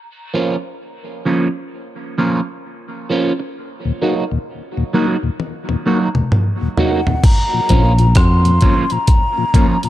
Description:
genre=dub reggae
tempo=65 BPM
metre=4/4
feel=swing 64% on 16ths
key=Bb minor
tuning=A4 = 440 Hz
part: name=electric guitar at the edge of break-up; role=accompaniment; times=0.3-9.9 s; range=F3 to Gb4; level=-20 LUFS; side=right 2 dB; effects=phaser, dub echo
part: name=mellow tonewheel organ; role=accompaniment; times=3.8-9.9 s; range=Eb2 to Gb4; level=-22 LUFS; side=left 4 dB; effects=slow rotary speaker, dub echo
part: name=breakbeat sampler-style drum kit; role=drums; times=5.4-9.9 s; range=crash cymbal, hi-hat, kick drum, rim click, toms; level=-15 LUFS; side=equal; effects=none
part: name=mellow hollow silver concert flute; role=melody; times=6.8-9.9 s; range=Gb5 to C6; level=-20 LUFS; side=left 1 dB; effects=dub echo
part: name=sustaining fretless electric bass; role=bass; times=7.7-8.6 s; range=Bb1 to F2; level=-12 LUFS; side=equal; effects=none
room=digital ambience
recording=dark, warm production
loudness=-14 LUFS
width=side -14 dB against mid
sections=0.0-7.2 A section; 7.2-9.9 B section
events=break 0.0-7.2; drum fill 5.4-7.2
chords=0.0 Bbm; 3.6 Ebm; 7.2 Bbm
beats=0.79 1.71 2.63 | 3.55 4.47 5.39 6.31 | 7.24 8.16 9.08

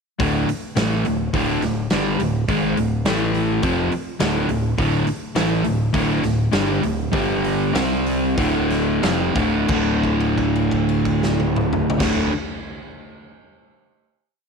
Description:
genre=classic rock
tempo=88-105 BPM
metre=4/4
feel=straight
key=unclear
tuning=A4 = 441 Hz
part: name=crunchy overdriven guitar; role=riff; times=0.2-12.3 s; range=D2 to C4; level=-22 LUFS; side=left 9 dB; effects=none
part: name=overdriven electric guitar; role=riff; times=0.2-12.3 s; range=D2 to C4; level=-22 LUFS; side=right 11 dB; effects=none
part: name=growling fingered electric bass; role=bass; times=0.2-12.3 s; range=D1 to C2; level=-27 LUFS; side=equal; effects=overdrive
part: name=huge arena drum kit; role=drums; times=0.2-12.2 s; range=crash cymbal, hi-hat, kick drum, snare drum, toms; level=-26 LUFS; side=equal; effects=none
room=light reverb, small room ambience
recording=1960s-style stereo with parts hard left and right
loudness=-18 LUFS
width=side -5 dB against mid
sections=0.2-9.7 riff; 9.7-12.4 final chord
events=slowing down 4.8-9.7; held note 9.7-12.0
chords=0.2 D5; 3.1 A5; 3.6 D5; 7.1 G5; 7.8 C5; 8.4 D5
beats=| 0.20 0.77 1.34 1.92 | 2.49 3.07 3.64 4.21 | 4.79 5.37 5.95 6.54 | 7.14 7.76 8.39 9.04 | 9.70 10.38 11.06 11.74

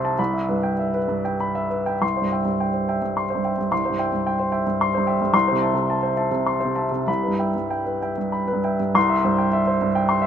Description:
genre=neoclassical minimalist piano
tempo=93-113 BPM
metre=3/4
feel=rubato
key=C major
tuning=A4 = 440 Hz
part: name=clear upright piano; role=solo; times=0.0-10.3 s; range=C2 to C6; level=-20 LUFS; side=equal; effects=none
room=moderate lush hall reverb, RT60 2.7 s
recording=rough home demo mix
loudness=-20 LUFS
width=side -8 dB against mid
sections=0.0-2.0 A section; 2.0-9.0 B section; 9.0-10.3 A section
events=none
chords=0.2 Em/C; 2.0 C; 5.3 Am/C; 7.1 Em/C; 9.0 C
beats=| 0.18 0.80 1.41 | 2.02 2.60 3.17 | 3.71 4.26 4.80 | 5.34 5.88 6.46 | 7.07 7.72 8.34 | 8.95 9.52 10.06

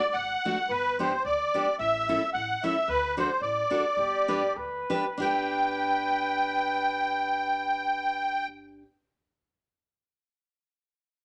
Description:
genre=alpine folk, alpine dance band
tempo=94-111 BPM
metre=2/4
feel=swing 54% on 8ths, rubato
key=G major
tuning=A4 = 440 Hz
part: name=musette accordion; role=melody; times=0.0-8.5 s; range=B4 to G5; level=-28 LUFS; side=equal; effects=none
part: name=upright bass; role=bass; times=0.1-8.8 s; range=G1 to D2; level=-48 LUFS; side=equal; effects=none
part: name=fingerpicked steel-string acoustic guitar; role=accompaniment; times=0.5-8.9 s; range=A3 to B4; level=-35 LUFS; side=equal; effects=none
part: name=mellow trumpet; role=second line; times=4.0-8.5 s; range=G4 to B4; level=-38 LUFS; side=equal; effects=none
room=moderate studio reverb, RT60 0.7 s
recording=none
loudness=-28 LUFS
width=mono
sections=0.0-5.2 A section; 5.2-7.7 B section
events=slowing down 2.9-5.2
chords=0.0 D; 0.7 G; 1.8 A; 2.9 D; 4.0 G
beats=0.15 | 0.70 1.25 | 1.80 2.34 | 2.88 3.43 | 3.99 4.58 | 5.20 5.83 | 6.46 7.08

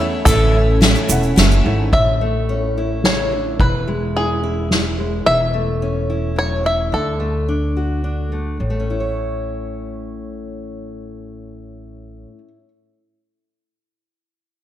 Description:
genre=indie folk with a building arrangement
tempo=108 BPM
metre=3/4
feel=straight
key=A major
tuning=A4 = 440 Hz
part: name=bluegrass banjo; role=melody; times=0.0-8.0 s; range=E4 to E5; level=-20 LUFS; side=left 1 dB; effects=none
part: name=clear upright piano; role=accompaniment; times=0.0-2.0 s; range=A1 to F#5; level=-24 LUFS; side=right 2 dB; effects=slapback echo
part: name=picked twelve-string acoustic guitar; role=accompaniment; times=0.0-1.9 s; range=A2 to E4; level=-23 LUFS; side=left 1 dB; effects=lush chorus
part: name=upright bass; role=bass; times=0.0-12.2 s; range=E1 to E2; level=-21 LUFS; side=equal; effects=none
part: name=soft-mallet drum kit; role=drums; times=0.3-5.1 s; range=hi-hat, kick drum, ride cymbal, snare drum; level=-19 LUFS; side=equal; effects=none
part: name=egg shaker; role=percussion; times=0.3-1.6 s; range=none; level=-25 LUFS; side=right 7 dB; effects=none
part: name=fingerpicked steel-string acoustic guitar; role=accompaniment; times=1.9-12.7 s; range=A2 to C#5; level=-24 LUFS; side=left 2 dB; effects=none
room=moderate scoring stage reverb, RT60 1.6 s, small room ambience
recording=big arena sound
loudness=-15 LUFS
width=side -12 dB against mid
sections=0.0-1.9 A section; 1.9-8.6 B section; 8.6-11.9 C section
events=none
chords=0.3 A; 3.6 E; 5.3 A/E; 6.9 D; 8.6 A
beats=| 0.27 0.82 1.38 | 1.93 2.48 3.04 | 3.59 4.15 4.71 | 5.26 5.82 6.37 | 6.93 7.49 8.04 | 8.60 9.15 9.71 | 10.27 10.83 11.38

